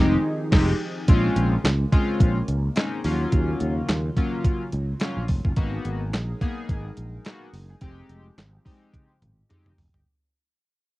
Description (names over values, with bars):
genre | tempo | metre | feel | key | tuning
early-eighties boogie funk | 107 BPM | 4/4 | swing 56% on 16ths | Bb minor | A4 = 440 Hz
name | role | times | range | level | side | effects
fat analog lead | melody | 0.0-0.6 s | Eb4 | -26 LUFS | equal | analog delay
chorused polysynth | accompaniment | 0.0-10.0 s | F3 to Ab4 | -28 LUFS | left 2 dB | none
chorused pulse-width pad | sustained chords | 0.0-10.0 s | Db3 to Bb4 | -37 LUFS | right 1 dB | none
sustaining fretless electric bass | bass | 0.0-10.0 s | F1 to Eb2 | -25 LUFS | equal | none
crisp 8-bit digital drum machine | drums | 0.5-10.1 s | crash cymbal, handclaps, hi-hat, kick drum, snare drum, toms | -21 LUFS | equal | cassette tape
room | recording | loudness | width
light reverb | home recording on cassette | -21 LUFS | side -19 dB against mid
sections
0.0-1.1 A section; 1.1-10.1 B section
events
band accent 0.0-1.1; fade-out 1.1-10.1; drum fill 8.9-10.1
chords
0.0 Fm9; 1.1 Bbm9; 3.0 Ebm9; 5.6 Abm9; 7.8 Fm9